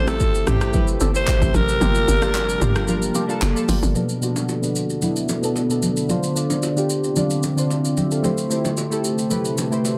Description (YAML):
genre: amapiano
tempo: 112 BPM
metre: 4/4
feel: straight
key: B phrygian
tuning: A4 = 440 Hz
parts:
  - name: breathy alto saxophone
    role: melody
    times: 0.0-3.4 s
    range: G4 to C5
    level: -26 LUFS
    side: equal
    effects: tape echo
  - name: glassy digital keys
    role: accompaniment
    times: 0.0-10.0 s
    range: B2 to A5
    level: -26 LUFS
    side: equal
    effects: chorus, low-pass filter
  - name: deep dark ambient pad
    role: sustained chords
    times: 0.0-10.0 s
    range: C3 to A4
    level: -29 LUFS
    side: equal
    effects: chorus, built-in reverb, sidechain pumping, low-pass filter
  - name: percussive organ stab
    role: stabs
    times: 0.0-3.8 s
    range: Bb3 to A4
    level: -33 LUFS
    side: equal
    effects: chorus, tape echo
  - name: tight log drum bass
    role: bass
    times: 0.0-3.9 s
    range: F#1 to A1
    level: -24 LUFS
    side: equal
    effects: none
  - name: deep house drum kit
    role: drums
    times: 0.1-10.0 s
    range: handclaps, hi-hat, kick drum, rim click, shaker, toms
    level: -27 LUFS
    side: equal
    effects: none
  - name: bongos and congas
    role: percussion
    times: 0.1-10.0 s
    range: none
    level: -30 LUFS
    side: equal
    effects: none
room: light reverb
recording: dense, heavily limited modern master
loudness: -20 LUFS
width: mono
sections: 0.0-4.0 A section; 4.0-10.0 B section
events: drop 0.0-4.0; kick muted 1.8-4.0; filter sweep 4.0-10.0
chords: 0.0 Am7; 1.8 Gm7; 4.0 Bm7; 6.1 Dm7; 8.2 Am7